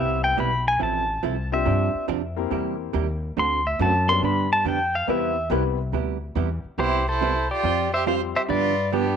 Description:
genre	country, western swing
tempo	140 BPM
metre	4/4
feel	swing 68% on 8ths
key	C major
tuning	A4 = 438 Hz
part	pedal steel guitar	melody	0.0-9.2 s	D4 to C6	-23 LUFS	left 1 dB	none
part	vintage hollow-body jazz guitar	accompaniment	0.0-9.1 s	C3 to C5	-28 LUFS	right 12 dB	none
part	warm upright piano	accompaniment	0.0-8.5 s	G3 to C5	-28 LUFS	left 15 dB	none
part	upright bass	bass	0.0-9.2 s	A1 to G2	-27 LUFS	left 2 dB	none
part	clear fiddle	second line	6.8-9.2 s	B3 to C5	-28 LUFS	right 11 dB	none
room	moderate spring reverb, RT60 1.3 s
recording	1960s-style stereo with parts hard left and right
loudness	-21 LUFS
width	side -7 dB against mid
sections	0.0-6.8 A section; 6.8-9.2 B section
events	pedal steel guitar solo 0.0-6.8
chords	0.0 Cmaj7; 0.8 Fmaj7; 1.7 G7sus4; 2.5 C7; 3.4 D7; 4.2 G; 5.1 Cmaj7; 7.6 Fsus2; 8.5 G7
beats	0.38 0.81 1.23 | 1.66 2.09 2.51 2.94 | 3.37 3.79 4.22 4.65 | 5.08 5.50 5.93 6.36 | 6.79 7.21 7.64 8.07 | 8.50 8.93

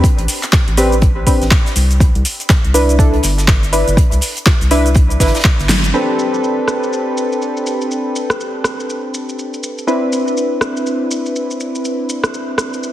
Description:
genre	deep house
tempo	122 BPM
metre	4/4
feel	swing 60% on 16ths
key	A minor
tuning	A4 = 440 Hz
part	warm analog keys	stabs	0.0-12.9 s	C4 to B4	-17 LUFS	equal	chorus, sidechain pumping, low-pass filter, dub echo
part	deep house drum kit	drums	0.0-12.9 s	handclaps, hi-hat, rim click, shaker, snare drum	-19 LUFS	equal	low-pass filter on hats, low-pass filter on perc, low-pass filter on snare
part	electronic kick drum	drums	0.0-5.6 s	none	-12 LUFS	equal	none
part	natural country drum kit	drums	0.0-5.8 s	hi-hat, snare drum	-28 LUFS	right 2 dB	sidechain pumping on hats, high-pass filter on hats, high-pass filter on snare, high-pass filter on room
part	round analog bass	bass	0.2-5.9 s	G1 to C2	-15 LUFS	equal	sidechain pumping
room	moderate echo chamber reverb, RT60 1.8 s, small room ambience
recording	heavily compressed radio sound, multiband compression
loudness	-13 LUFS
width	side -13 dB against mid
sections	0.0-5.9 A section; 5.9-12.9 B section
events	drum fill 5.7; band accent 5.7; filter sweep on synth keys 5.9-12.9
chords	0.0 Am11; 9.9 Cmaj9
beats	| 0.04 0.53 1.02 1.51 | 2.00 2.50 2.99 3.48 | 3.97 4.46 4.96 5.45 | 5.94 6.43 6.92 7.41 | 7.91 8.40 8.89 9.38 | 9.87 10.37 10.86 11.35 | 11.84 12.33 12.82

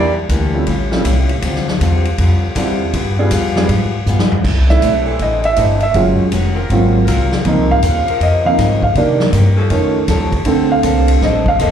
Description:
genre	jazz, big band swing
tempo	159 BPM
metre	4/4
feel	swing 65% on 8ths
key	unclear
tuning	A4 = 441 Hz
part	picked steel-string acoustic guitar	accompaniment	0.0-11.7 s	Ab2 to C#5	-22 LUFS	left 6 dB	slapback echo
part	upright bass	bass	0.0-11.7 s	F1 to C3	-16 LUFS	equal	none
part	swinging big-band drum kit	drums	0.3-11.7 s	crash cymbal, hi-hat, kick drum, ride cymbal, snare drum, toms	-20 LUFS	equal	none
part	warm concert grand piano	accompaniment	0.5-11.7 s	D3 to F5	-15 LUFS	right 3 dB	slapback echo
part	clear saxophone section	sustained chords	5.0-10.1 s	E3 to C5	-26 LUFS	equal	none
room	light reverb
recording	live gig heard through the venue's PA, club reverb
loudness	-12 LUFS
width	side -9 dB against mid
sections	0.0-4.4 A section; 4.4-11.7 B section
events	drum fill 4.1-4.4; grand piano solo 4.4-11.7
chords	0.0 Em7b5; 0.7 A7alt; 1.4 Dm11; 2.9 G7b9; 4.4 C69; 6.0 Ebm11; 6.7 Ab13; 7.5 Dbmaj13; 9.0 Cm7; 9.7 Faug7; 10.5 Bbmaj9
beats	0.29 0.67 1.05 | 1.43 1.81 2.18 2.56 | 2.94 3.32 3.69 4.07 | 4.45 4.82 5.20 5.58 | 5.95 6.33 6.71 7.08 | 7.46 7.83 8.21 8.59 | 8.96 9.34 9.71 10.09 | 10.47 10.85 11.22 11.60

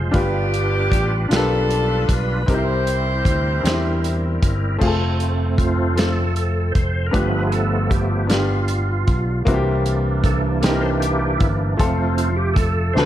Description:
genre	slow gospel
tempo	52 BPM (dotted quarters)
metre	6/8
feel	straight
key	F major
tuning	A4 = 440 Hz
part	clear upright piano	accompaniment	0.0-13.1 s	G2 to C5	-25 LUFS	left 2 dB	none
part	bright tonewheel organ	sustained chords	0.0-13.1 s	C3 to C5	-24 LUFS	right 2 dB	fast rotary speaker, chorus vibrato
part	fingered electric bass	bass	0.0-13.1 s	F1 to E2	-21 LUFS	equal	none
part	warm soul drum kit	drums	0.1-13.1 s	crash cymbal, hi-hat, kick drum, snare drum	-22 LUFS	equal	none
part	warm saxophone section	melody	0.2-4.5, 13.0-13.1 s	B3 to C5	-23 LUFS	left 1 dB	slapback echo
part	dark French horn section	sustained chords	4.8-13.1 s	C3 to A4	-34 LUFS	right 2 dB	none
room	light reverb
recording	none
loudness	-17 LUFS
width	side -12 dB against mid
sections	0.0-4.8 A section; 4.8-13.1 B section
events	tonewheel organ solo 4.8-13.1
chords	0.1 G7; 2.5 C7; 4.8 F; 7.1 G7; 9.5 C7; 11.8 F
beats	| 0.14 1.31 | 2.48 3.65 | 4.81 5.98 | 7.14 8.31 | 9.47 10.63 | 11.79 12.95

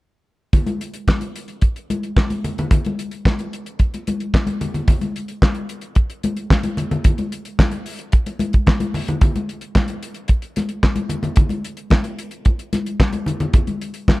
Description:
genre	disco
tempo	111 BPM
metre	4/4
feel	straight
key	none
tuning	none
part	damped 70s drum kit	drums	0.5-14.2 s	handclaps, hi-hat, kick drum, snare drum	-16 LUFS	equal	none
part	congas	percussion	0.5-14.2 s	none	-23 LUFS	left 2 dB	none
room	little or no reverb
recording	none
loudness	-18 LUFS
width	side -20 dB against mid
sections	0.5-14.2 A section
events	none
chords	none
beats	| 0.53 1.08 1.62 2.16 | 2.71 3.25 3.79 4.34 | 4.88 5.42 5.96 6.51 | 7.05 7.59 8.13 8.68 | 9.22 9.76 10.30 10.84 | 11.38 11.92 12.46 13.00 | 13.54 14.08

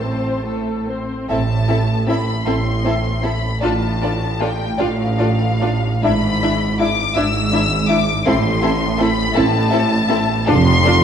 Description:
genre	classical, slow romantic movement for string orchestra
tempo	46-56 BPM (dotted quarters)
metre	6/8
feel	rubato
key	A minor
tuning	A4 = 445 Hz
part	rich symphonic violin section	melody	0.0-11.0 s	F5 to E6	-22 LUFS	left 5 dB	none
part	warm symphonic violin section	second line	0.0-10.9 s	E4 to E5	-24 LUFS	left 4 dB	none
part	clear symphonic viola section	accompaniment	0.0-10.9 s	A3 to C5	-22 LUFS	equal	none
part	clear symphonic double bass section	bass	0.0-11.0 s	F1 to A1	-21 LUFS	right 2 dB	none
part	rich symphonic cello section	bass	0.0-11.0 s	F2 to A2	-21 LUFS	right 2 dB	none
room	moderate scoring stage reverb, RT60 1.7 s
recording	dark, warm production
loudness	-15 LUFS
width	side -8 dB against mid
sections	0.0-1.3 A section; 1.3-11.0 B section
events	none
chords	0.0 Am; 3.6 Dm/A; 6.0 E7/G#; 8.3 Am; 10.5 Dm/F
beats	0.02 | 1.29 2.46 | 3.62 4.79 | 6.04 7.17 | 8.26 9.36 | 10.49

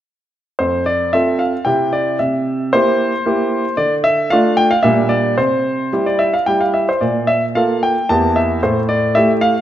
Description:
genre	classical-period piano sonatina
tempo	113 BPM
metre	3/4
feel	rubato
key	unclear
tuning	A4 = 443 Hz
part	clear concert grand piano	solo	0.6-9.6 s	E2 to A5	-13 LUFS	equal	none
room	moderate recital hall reverb, RT60 1.5 s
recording	none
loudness	-13 LUFS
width	side -11 dB against mid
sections	0.6-9.6 A section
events	none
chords	0.6 F; 1.7 C; 2.2 C7; 3.8 Dm; 4.8 Gm/Bb; 5.4 C; 7.0 Bb5; 8.1 Edim; 8.6 A5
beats	| 0.60 1.14 1.67 | 2.20 2.73 3.26 | 3.79 4.31 4.84 | 5.38 5.93 6.48 | 7.02 7.56 8.09 | 8.63 9.16

